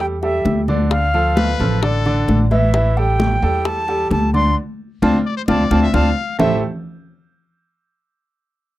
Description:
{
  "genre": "latin, Cuban son and guajira",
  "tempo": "131 BPM",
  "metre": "4/4",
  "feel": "straight",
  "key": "A minor",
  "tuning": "A4 = 440 Hz",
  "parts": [
    { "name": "reedy silver concert flute", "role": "melody", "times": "0.0-6.1 s", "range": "E5 to C6", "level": "-21 LUFS", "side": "equal", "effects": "none" },
    { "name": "clear baby grand piano", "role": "arpeggios", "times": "0.0-6.6 s", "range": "D3 to E5", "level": "-20 LUFS", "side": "right 1 dB", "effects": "none" },
    { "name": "upright bass", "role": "bass", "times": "0.0-6.6 s", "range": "A1 to E2", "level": "-19 LUFS", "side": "equal", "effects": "none" },
    { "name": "bongos", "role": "percussion", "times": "0.0-6.5 s", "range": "none", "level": "-24 LUFS", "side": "left 6 dB", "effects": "none" },
    { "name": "congas", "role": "percussion", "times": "0.0-6.5 s", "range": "none", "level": "-21 LUFS", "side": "left 1 dB", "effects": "none" },
    { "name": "bright trumpet", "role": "second line", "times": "1.4-2.4, 5.3-6.6 s", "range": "A4 to F5", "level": "-24 LUFS", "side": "left 7 dB", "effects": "none" }
  ],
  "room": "light reverb",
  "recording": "dry, close 1970s-style studio recording",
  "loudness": "-15 LUFS",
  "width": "side -15 dB against mid",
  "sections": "0.0-6.4 A section; 6.4-8.2 B section",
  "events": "band accent 4.6-6.4",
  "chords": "0.0 A5; 0.9 Dm; 2.7 A5; 4.6 Dm7; 6.4 Am7"
}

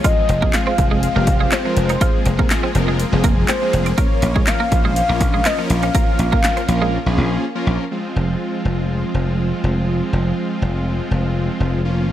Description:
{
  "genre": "dance-pop",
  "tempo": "122 BPM",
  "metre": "4/4",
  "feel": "straight",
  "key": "F minor",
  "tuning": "A4 = 440 Hz",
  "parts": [
    { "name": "warm velvety synth lead", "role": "melody", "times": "0.0-7.7 s", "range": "C5 to F5", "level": "-22 LUFS", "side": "left 1 dB", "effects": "chorus, tape echo" },
    { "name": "big bright polysynth", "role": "accompaniment", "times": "0.0-12.1 s", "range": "F3 to C5", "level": "-23 LUFS", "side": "equal", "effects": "sidechain pumping" },
    { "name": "supersaw chords", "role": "sustained chords", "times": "0.0-7.9 s", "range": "F3 to Db4", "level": "-28 LUFS", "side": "equal", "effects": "sidechain pumping" },
    { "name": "twelve-string electric guitar", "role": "riff", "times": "0.0-6.9 s", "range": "Ab3 to F4", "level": "-26 LUFS", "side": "right 6 dB", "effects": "analog chorus" },
    { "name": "house drum kit", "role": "drums", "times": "0.0-6.8 s", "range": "handclaps, hi-hat, kick drum, snare drum", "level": "-18 LUFS", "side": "equal", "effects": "none" },
    { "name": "dry thumbed slap bass", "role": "bass", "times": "0.3-12.1 s", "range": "F1 to Bb1", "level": "-19 LUFS", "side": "equal", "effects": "sidechain pumping" }
  ],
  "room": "digital ambience",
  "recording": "none",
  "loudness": "-16 LUFS",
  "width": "side -12 dB against mid",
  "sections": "0.0-7.9 A section; 7.9-12.1 B section",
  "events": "break 6.9-7.9",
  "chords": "0.0 Fm; 4.0 Bbm; 7.9 Fm"
}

